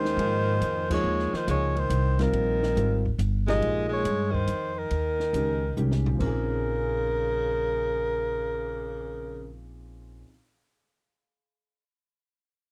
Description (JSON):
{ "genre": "modal jazz", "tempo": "140 BPM", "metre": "3/4", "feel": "swing 67% on 8ths", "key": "Bb dorian", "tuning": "A4 = 440 Hz", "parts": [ { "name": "breathy soprano saxophone", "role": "melody", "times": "0.0-9.5 s", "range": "Bb4 to Eb5", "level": "-31 LUFS", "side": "equal", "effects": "none" }, { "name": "clear tenor saxophone", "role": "second line", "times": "0.0-9.5 s", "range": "Db3 to Ab3", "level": "-35 LUFS", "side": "equal", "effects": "slapback echo" }, { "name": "warm concert grand piano", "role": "accompaniment", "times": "0.0-10.3 s", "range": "Bb2 to Bb4", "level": "-35 LUFS", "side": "equal", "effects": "none" }, { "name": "upright bass", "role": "bass", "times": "0.0-10.2 s", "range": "G1 to Ab2", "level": "-31 LUFS", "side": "equal", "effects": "none" }, { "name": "compact cocktail drum kit", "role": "drums", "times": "0.1-8.7 s", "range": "crash cymbal, cymbal swell, hi-hat, kick drum, ride cymbal, snare drum, toms", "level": "-37 LUFS", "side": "equal", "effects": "none" } ], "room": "little or no reverb", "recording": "dry, close 1970s-style studio recording", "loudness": "-26 LUFS", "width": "mono", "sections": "0.0-3.6 A section; 3.6-6.2 B section; 6.2-8.8 C section", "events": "band accent 0.8; drum fill 5.8-6.2", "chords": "0.0 Absus2; 3.6 Absus2/Bb; 6.2 Bbm11" }